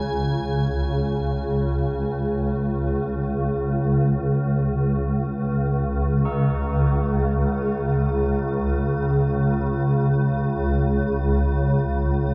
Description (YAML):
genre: dark ambient drone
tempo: free time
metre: none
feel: none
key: unclear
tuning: A4 = 440 Hz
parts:
  - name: swarming drone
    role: drone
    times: 0.0-12.3 s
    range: C#2 to C#3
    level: -22 LUFS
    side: equal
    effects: built-in reverb
  - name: tubular bells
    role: arpeggios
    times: 6.3-12.3 s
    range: D#4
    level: -43 LUFS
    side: equal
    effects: delay
room: wet huge ambient reverb, RT60 7.5 s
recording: cassette tape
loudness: -22 LUFS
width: mono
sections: 0.4-12.3 A section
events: fade-in on tubular bells 0.4-12.3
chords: 0.4 C#sus2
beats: free time